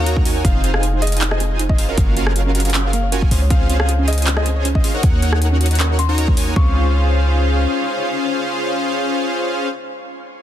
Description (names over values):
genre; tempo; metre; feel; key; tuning
future bass; 157 BPM; 4/4; half-time; Db major; A4 = 440 Hz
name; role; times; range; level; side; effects
dark baby grand piano; melody; 0.0-9.7 s; Eb5 to Db6; -30 LUFS; left 4 dB; sidechain pumping, dub echo
clear studio string section; sustained chords; 0.0-9.7 s; Db3 to Eb5; -33 LUFS; left 1 dB; sidechain pumping
big bright polysynth; riff; 0.0-9.7 s; Db4 to Bb5; -21 LUFS; equal; chorus, sidechain pumping, dub echo
warm 808-style bass; bass; 0.0-7.7 s; F1 to Eb2; -17 LUFS; equal; sidechain pumping
soft round pluck; arpeggios; 0.1-6.7 s; Bb3 to F5; -29 LUFS; right 5 dB; chorus, sidechain pumping, dub echo
big-room dance drum kit; drums; 0.1-6.5 s; handclaps, hi-hat, rim click; -24 LUFS; equal; none
electronic kick drum; drums; 0.2-6.7 s; none; -16 LUFS; equal; none
room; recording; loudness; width
little or no reverb; dense, heavily limited modern master; -15 LUFS; side -11 dB against mid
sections
0.0-6.6 A section; 6.6-9.6 B section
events
drop 0.0-6.6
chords
0.4 Fm7; 2.0 Gbmaj7; 3.3 Dbmaj7; 5.0 Ebm7; 6.6 Dbmaj7